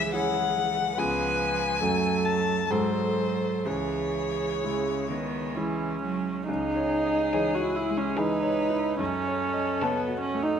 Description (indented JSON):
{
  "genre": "classical, slow romantic movement for piano quintet",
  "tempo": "60-76 BPM",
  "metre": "3/4",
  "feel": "rubato",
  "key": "C# minor",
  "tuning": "A4 = 438 Hz",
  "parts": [
    { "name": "rich violin", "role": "melody", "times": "0.0-10.6 s", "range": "G#4 to A5", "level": "-30 LUFS", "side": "left 6 dB", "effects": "none" },
    { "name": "rich cello", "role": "second line", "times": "0.0-10.4 s", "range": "C#3 to F#3", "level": "-33 LUFS", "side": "right 6 dB", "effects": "none" },
    { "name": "bright concert grand piano", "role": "accompaniment", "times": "0.0-10.6 s", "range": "C#2 to D#5", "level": "-31 LUFS", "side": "equal", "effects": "none" },
    { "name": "dark viola", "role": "accompaniment", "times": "0.0-10.6 s", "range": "B3 to B4", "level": "-28 LUFS", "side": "right 2 dB", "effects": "none" },
    { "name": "rich violin", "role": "second line", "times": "7.3-10.4 s", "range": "G#4 to A4", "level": "-33 LUFS", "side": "left 5 dB", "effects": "none" }
  ],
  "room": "wet stone room reverb, RT60 1.1 s",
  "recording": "none",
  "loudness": "-24 LUFS",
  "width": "side -8 dB against mid",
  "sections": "0.0-6.5 A section; 6.5-10.6 A section",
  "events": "none",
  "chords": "0.0 C#m; 1.0 C#7; 1.8 F#m; 2.7 G#7b9; 3.7 C#m; 9.0 F#m",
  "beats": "0.14 | 0.98 1.82 2.70 | 3.65 4.63 5.56 | 6.48 7.34 8.17 | 9.00 9.82"
}